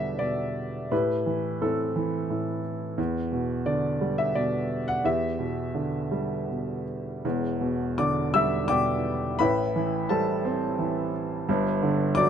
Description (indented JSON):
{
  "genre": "classical, lyrical solo piano",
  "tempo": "78-90 BPM",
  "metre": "3/4",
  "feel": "rubato",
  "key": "E minor",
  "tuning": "A4 = 440 Hz",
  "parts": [
    { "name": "clear upright piano", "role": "solo", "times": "0.0-12.3 s", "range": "E1 to E6", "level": "-24 LUFS", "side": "equal", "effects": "none" }
  ],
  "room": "light reverb",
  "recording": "close, detailed microphones",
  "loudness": "-24 LUFS",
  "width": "side -8 dB against mid",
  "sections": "0.0-7.2 A section; 7.2-12.3 A section",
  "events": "none",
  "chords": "0.0 Em7; 0.9 Am9; 3.0 Em7; 9.4 Am9; 11.5 Gmaj7(no3)",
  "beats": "0.20 | 0.92 1.62 2.31 | 2.98 3.66 4.35 | 5.04 5.75 6.49 | 7.25 7.98 8.69 | 9.40 10.11 10.80 | 11.48 12.16"
}